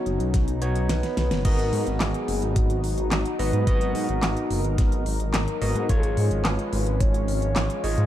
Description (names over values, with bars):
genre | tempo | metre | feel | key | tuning
synthwave | 108 BPM | 4/4 | straight | unclear | A4 = 440 Hz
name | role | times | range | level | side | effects
soft octave-layered synth lead | melody | 0.0-8.1 s | F#4 to D#5 | -30 LUFS | left 2 dB | chorus, ping-pong delay
phased analog pad | sustained chords | 0.0-8.1 s | E#3 to A#4 | -32 LUFS | equal | phaser, chorus, sidechain pumping
overdriven tine electric piano | stabs | 0.0-8.1 s | G#3 to D#5 | -32 LUFS | right 2 dB | digital delay
dark detuned saw bass | bass | 0.1-8.1 s | F#1 to G#2 | -25 LUFS | equal | none
pop drum kit | drums | 0.1-8.1 s | crash cymbal, handclaps, hi-hat, snare drum | -29 LUFS | equal | small room ambience
electronic kick drum | drums | 0.3-7.1 s | none | -22 LUFS | equal | small room ambience
room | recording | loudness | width
light reverb | dark, warm production | -21 LUFS | side -12 dB against mid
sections
0.0-1.4 A section; 1.4-8.1 B section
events
drum fill 1.0-1.4; band accent 1.3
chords
0.0 Badd9; 1.4 B; 5.9 C#/G#